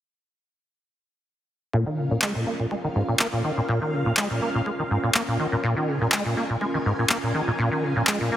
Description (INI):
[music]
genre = acid house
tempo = 123 BPM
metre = 4/4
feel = swing 53% on 16ths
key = Bb minor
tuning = A4 = 440 Hz
[part]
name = string machine, full ensemble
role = sustained chords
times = 1.7-8.4 s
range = Db4 to Ab5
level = -30 LUFS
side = equal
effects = ensemble chorus, sidechain pumping
[part]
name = acid bass, saw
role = riff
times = 1.7-8.4 s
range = Ab2 to Bb3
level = -24 LUFS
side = equal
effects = ensemble chorus, tape echo
[part]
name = electronic kick drum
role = drums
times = 1.7-8.2 s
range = none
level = -39 LUFS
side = equal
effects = none
[part]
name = electronic handclaps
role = drums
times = 2.2-8.2 s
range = none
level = -25 LUFS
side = equal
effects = none
[sound]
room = moderate lush hall reverb, RT60 2.4 s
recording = heavily compressed radio sound, multiband compression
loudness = -22 LUFS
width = side -12 dB against mid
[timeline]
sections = 1.7-8.4 A section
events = filter sweep on acid bass 1.7-8.4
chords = 1.7 Bbm